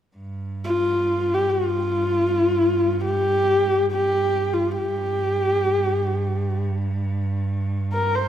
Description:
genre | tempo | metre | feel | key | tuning
mongolian traditional, Mongolian folk | free time | none | none | unclear | A4 = 441 Hz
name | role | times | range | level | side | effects
bright cello | drone | 0.2-8.3 s | G2 | -26 LUFS | right 2 dB | none
warm horsehead fiddle | melody | 0.6-8.3 s | F4 to C5 | -20 LUFS | left 1 dB | none
room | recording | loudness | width
wet recital hall reverb, RT60 1.4 s | none | -20 LUFS | side -10 dB against mid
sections
0.2-8.3 A section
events
none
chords
none

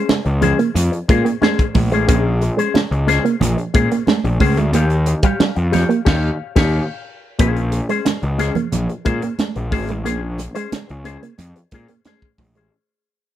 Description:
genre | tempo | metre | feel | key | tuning
funk | 90 BPM | 4/4 | straight | Bb dorian | A4 = 439 Hz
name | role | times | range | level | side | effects
electric guitar with an envelope filter | accompaniment | 0.0-12.7 s | Db4 to F5 | -22 LUFS | left 8 dB | spring reverb
electric guitar with an envelope filter | riff | 0.0-12.7 s | G3 to Bb3 | -21 LUFS | right 6 dB | none
fuzz picked electric bass | bass | 0.1-12.7 s | Ab1 to Bb2 | -19 LUFS | equal | overdrive
crisp fusion drum kit | drums | 0.1-12.7 s | crash cymbal, hi-hat, kick drum, snare drum | -19 LUFS | equal | none
congas | percussion | 0.1-12.5 s | none | -24 LUFS | right 7 dB | none
room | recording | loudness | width
little or no reverb | none | -15 LUFS | side -12 dB against mid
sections
0.0-7.4 A section; 7.4-12.7 B section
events
band accent 6.1-7.4; fade-out 7.4-12.7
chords
0.0 Bbm9; 4.7 Eb9; 7.4 Bbm9

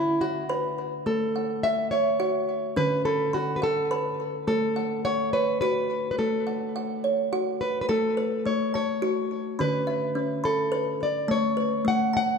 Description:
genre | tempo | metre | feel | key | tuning
world meditative, meditative tuned percussion | 70 BPM (dotted quarters) | 6/8 | straight | A major | A4 = 444 Hz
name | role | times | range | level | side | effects
nylon-string guitar | melody | 0.0-12.4 s | E4 to F#5 | -26 LUFS | equal | ping-pong delay
kalimba | arpeggios | 0.0-12.4 s | D3 to B5 | -27 LUFS | equal | ping-pong delay
room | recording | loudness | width
wet echo chamber reverb, RT60 2.5 s | dark, warm production | -24 LUFS | side -5 dB against mid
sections
0.0-7.9 A section; 7.9-12.4 B section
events
none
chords
0.0 D; 1.1 A; 2.8 D; 4.5 A; 9.6 D5; 11.3 A

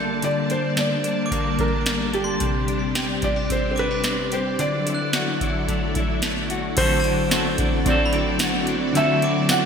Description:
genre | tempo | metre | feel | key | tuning
dream pop | 110 BPM | 4/4 | straight | D mixolydian | A4 = 439 Hz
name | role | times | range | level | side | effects
felt-muted upright piano | melody | 0.0-9.7 s | G4 to F#5 | -26 LUFS | right 1 dB | ping-pong delay
string machine, violas | sustained chords | 0.0-9.7 s | D3 to A5 | -26 LUFS | equal | ensemble chorus
direct-recorded clean electric guitar | arpeggios | 0.0-9.7 s | C3 to A4 | -27 LUFS | left 4 dB | ensemble chorus, ping-pong delay
glockenspiel with brass mallets | texture | 0.0-9.7 s | A5 to G6 | -34 LUFS | right 3 dB | ping-pong delay
booming analog drum machine | drums | 0.2-9.6 s | crash cymbal, hi-hat, kick drum, snare drum, tambourine | -25 LUFS | right 1 dB | gated reverb
semi-hollow electric guitar | accompaniment | 6.8-9.7 s | D3 to A4 | -24 LUFS | right 1 dB | tremolo, lush chorus
room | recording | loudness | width
wet lush hall reverb, RT60 2.0 s | bright 1980s-style digital production | -19 LUFS | side -6 dB against mid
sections
0.0-6.8 A section; 6.8-9.7 B section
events
none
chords
0.0 Gmadd9/D; 2.4 Csus2; 4.6 Dadd9; 6.8 D9

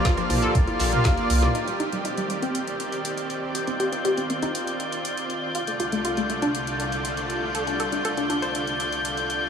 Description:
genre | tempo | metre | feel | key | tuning
progressive house | 120 BPM | 4/4 | straight | C dorian | A4 = 440 Hz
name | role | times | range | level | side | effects
supersaw pad | sustained chords | 0.0-9.5 s | C2 to D5 | -29 LUFS | right 2 dB | sidechain pumping
analog pluck | arpeggios | 0.0-9.4 s | F3 to C5 | -29 LUFS | left 1 dB | chorus, sidechain pumping, digital delay
soft supersaw | stabs | 0.0-1.5 s | Bb3 to F5 | -28 LUFS | equal | sidechain pumping, low-pass filter, digital delay
electronic kick drum | drums | 0.0-1.1 s | none | -22 LUFS | equal | none
tight metal drum kit | drums | 0.0-1.5 s | hi-hat, snare drum | -38 LUFS | right 3 dB | none
drifting glass-harmonics texture | texture | 0.0-9.5 s | F6 to G6 | -31 LUFS | left 4 dB | chorus, built-in reverb, sidechain pumping
deep house drum kit | drums | 0.1-9.4 s | hi-hat, rim click, snare drum | -33 LUFS | equal | none
round analog bass | bass | 0.3-1.5 s | Bb1 to C2 | -23 LUFS | equal | sidechain pumping
electronic toms and congas | percussion | 0.3-1.5 s | none | -29 LUFS | left 2 dB | sidechain pumping on toms, sidechain pumping on perc
room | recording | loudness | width
moderate huge ambient reverb, RT60 7.7 s | small room ambience | -22 LUFS | side -7 dB against mid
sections
0.0-1.5 A section; 1.5-9.5 B section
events
drum fill 1.0-1.5; band accent 1.4; filter sweep on synth pluck 1.5-9.5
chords
0.0 Bb; 1.5 Cmadd9; 5.5 Dm/C

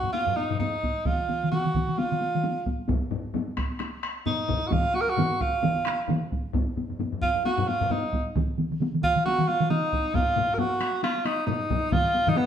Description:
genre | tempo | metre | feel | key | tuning
japanese traditional, taiko drum ensemble | 132 BPM | 4/4 | swing 60% on 16ths | unclear | A4 = 440 Hz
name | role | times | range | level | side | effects
breathy tenor saxophone | melody | 0.0-12.5 s | Cb4 to Bb4 | -26 LUFS | right 1 dB | none
taiko ensemble | percussion | 0.0-12.5 s | none | -33 LUFS | left 3 dB | none
taiko ensemble | percussion | 0.0-12.4 s | none | -32 LUFS | left 4 dB | none
solo taiko drums | percussion | 0.8-12.0 s | none | -30 LUFS | right 1 dB | none
taiko ensemble | percussion | 1.1-12.4 s | none | -28 LUFS | right 1 dB | none
room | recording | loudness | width
wet stone room reverb, RT60 1.0 s | band playing live in one room | -24 LUFS | side -9 dB against mid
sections
0.0-12.5 A section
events
speeding up 0.0-12.5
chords
none

